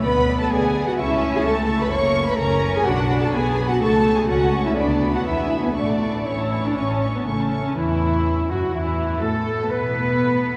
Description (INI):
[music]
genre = quick classical-period movement for symphony orchestra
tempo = 118-129 BPM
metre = 4/4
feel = rubato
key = A major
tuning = A4 = 440 Hz
[part]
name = warm studio violin section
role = melody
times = 0.0-10.6 s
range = E4 to C#6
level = -34 LUFS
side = equal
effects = none
[part]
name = rich studio violin section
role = second line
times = 0.0-10.6 s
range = E4 to C#6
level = -30 LUFS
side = equal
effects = none
[part]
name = warm studio viola section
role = accompaniment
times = 0.0-10.6 s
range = E3 to E4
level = -26 LUFS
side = equal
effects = none
[part]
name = dark chamber cello section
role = bass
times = 0.0-10.6 s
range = C#3 to C#5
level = -26 LUFS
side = equal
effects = none
[part]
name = warm studio double bass section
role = bass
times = 0.0-10.6 s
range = F#1 to B2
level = -28 LUFS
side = equal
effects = none
[part]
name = bright clarinet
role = second line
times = 7.3-10.6 s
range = C#4 to B4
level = -28 LUFS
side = equal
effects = none
[sound]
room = wet cathedral reverb, RT60 6.2 s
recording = recorded in a church or concert hall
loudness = -21 LUFS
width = mono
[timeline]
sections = 0.0-7.8 A section; 7.8-10.6 B section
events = none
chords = 0.0 Bm/D; 1.0 A/C#; 1.9 F#; 2.9 Bm7; 3.8 A/C#; 4.8 Bm7/D; 5.3 E; 5.8 A; 7.8 A5/E; 9.7 N.C.